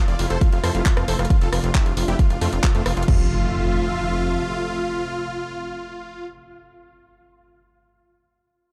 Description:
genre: uplifting trance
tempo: 135 BPM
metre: 4/4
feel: straight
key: F major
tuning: A4 = 441 Hz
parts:
  - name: big supersaw lead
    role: melody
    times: 0.0-6.3 s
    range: A3 to D5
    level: -29 LUFS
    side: equal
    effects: sidechain pumping, dub echo
  - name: analog string pad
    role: sustained chords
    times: 0.0-6.3 s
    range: C3 to E5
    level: -33 LUFS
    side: equal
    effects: ensemble chorus, sidechain pumping
  - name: plucky analog bass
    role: bass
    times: 0.1-4.4 s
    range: F1 to F2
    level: -26 LUFS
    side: equal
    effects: sidechain pumping
  - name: house drum kit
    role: drums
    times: 0.1-3.2 s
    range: crash cymbal, handclaps, hi-hat, rim click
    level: -31 LUFS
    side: equal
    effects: none
  - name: electronic kick drum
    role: drums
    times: 0.4-3.2 s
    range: none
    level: -20 LUFS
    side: equal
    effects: none
  - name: impact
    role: sound effects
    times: 3.1-6.3 s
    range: none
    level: -31 LUFS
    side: equal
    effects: none
room: little or no reverb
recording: dark, warm production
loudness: -21 LUFS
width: mono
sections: 0.0-3.1 A section; 3.1-6.6 B section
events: drop 0.0-3.1; band accent 2.6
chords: 0.0 Fmaj7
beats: 0.41 0.86 | 1.30 1.75 2.19 2.64 | 3.08 3.53 3.97 4.42 | 4.86 5.30 5.75 6.19

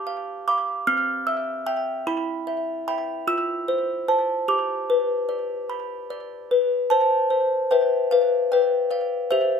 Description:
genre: classical, lullaby for music box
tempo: 50 BPM (dotted quarters)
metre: 6/8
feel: straight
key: C major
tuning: A4 = 440 Hz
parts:
  - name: music box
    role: solo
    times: 0.0-9.6 s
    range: C4 to F6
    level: -21 LUFS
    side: left 1 dB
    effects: slapback echo
room: light reverb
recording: close, detailed microphones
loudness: -21 LUFS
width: side -6 dB against mid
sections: 0.0-6.9 A section; 6.9-9.6 B section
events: none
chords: 0.0 G7; 0.9 C; 2.1 Em; 3.3 F; 4.5 G; 6.9 C; 8.1 G7/B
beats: 0.86 | 2.06 3.27 | 4.48 5.69 | 6.90 8.10 | 9.30

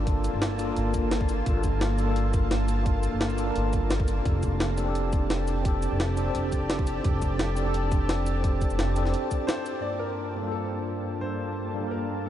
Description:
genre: liquid drum and bass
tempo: 172 BPM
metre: 4/4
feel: straight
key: unclear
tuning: A4 = 440 Hz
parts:
  - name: tine electric piano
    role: accompaniment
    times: 0.0-12.3 s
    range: G2 to A5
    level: -30 LUFS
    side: equal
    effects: medium stereo tremolo, tape echo
  - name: shimmering ambient pad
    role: sustained chords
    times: 0.0-12.3 s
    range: Bb3 to A5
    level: -34 LUFS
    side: left 1 dB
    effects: chorus, built-in reverb
  - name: upright bass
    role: bass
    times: 0.0-9.1 s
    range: F1 to G1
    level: -27 LUFS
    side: equal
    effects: none
  - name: electronic kick drum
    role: drums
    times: 0.1-9.4 s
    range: none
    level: -26 LUFS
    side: equal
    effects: none
  - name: jungle sampler-style drum kit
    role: drums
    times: 0.1-9.7 s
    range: hi-hat, shaker, snare drum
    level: -34 LUFS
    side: equal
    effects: none
  - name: clear concert grand piano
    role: melody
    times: 9.5-12.3 s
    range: A4 to D5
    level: -36 LUFS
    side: left 1 dB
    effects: tape echo
room: moderate huge ambient reverb, RT60 8.6 s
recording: dreamy mix soaked in reverb, nothing above 11.0 kHz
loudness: -24 LUFS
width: side -11 dB against mid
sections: 0.0-9.8 A section; 9.8-12.3 B section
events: filter sweep on ambient pad 9.8-12.3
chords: 0.0 Gm9; 4.3 F69; 9.8 Gm9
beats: | 0.07 0.42 0.77 1.12 | 1.46 1.81 2.16 2.51 | 2.86 3.21 3.56 3.91 | 4.25 4.60 4.95 5.30 | 5.65 6.00 6.35 6.70 | 7.05 7.39 7.74 8.09 | 8.44 8.79 9.14 9.49 | 9.84 10.19 10.53 10.88 | 11.23 11.58 11.93 12.28

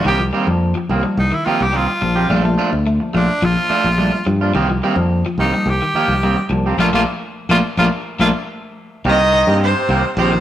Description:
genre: afrobeat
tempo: 107 BPM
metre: 4/4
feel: straight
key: C dorian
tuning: A4 = 440 Hz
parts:
  - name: raspy tenor saxophone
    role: melody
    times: 0.0-8.3 s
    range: D4 to G4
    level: -20 LUFS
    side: equal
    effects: none
  - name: tine electric piano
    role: accompaniment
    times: 0.0-8.3 s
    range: F3 to D4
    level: -28 LUFS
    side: left 3 dB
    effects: overdrive
  - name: electric guitar at the edge of break-up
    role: arpeggios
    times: 0.0-10.4 s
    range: C3 to Bb3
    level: -23 LUFS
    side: left 2 dB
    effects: spring reverb
  - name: electric guitar at the edge of break-up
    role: stabs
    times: 0.0-10.4 s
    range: Eb3 to G4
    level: -21 LUFS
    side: right 3 dB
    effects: none
  - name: fingered electric bass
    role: bass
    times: 0.0-10.4 s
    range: Bb1 to G2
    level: -18 LUFS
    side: equal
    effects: none
  - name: rich cello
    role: melody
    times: 9.1-10.4 s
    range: C5 to Eb5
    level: -16 LUFS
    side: right 2 dB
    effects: none
  - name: bright alto saxophone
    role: second line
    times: 9.1-10.4 s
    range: C4 to Eb4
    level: -26 LUFS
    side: right 3 dB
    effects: none
  - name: raspy baritone saxophone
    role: second line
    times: 9.1-10.4 s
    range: C3 to Eb3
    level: -22 LUFS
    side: left 4 dB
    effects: none
room: moderate stone room reverb, RT60 1.1 s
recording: rough rehearsal-room recording, tube saturation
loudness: -14 LUFS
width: side -12 dB against mid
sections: 0.0-9.0 A section; 9.0-10.4 B section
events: tenor saxophone solo 0.0-9.0; band accent 6.8-9.0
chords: 0.0 Cm7; 2.3 Bbmaj7; 4.5 Cm7; 6.8 Bbmaj7; 9.0 Cm7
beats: | 0.04 0.61 1.17 1.73 | 2.29 2.86 3.42 3.98 | 4.54 5.11 5.67 6.23 | 6.79 7.36 7.92 8.48 | 9.04 9.60 10.16

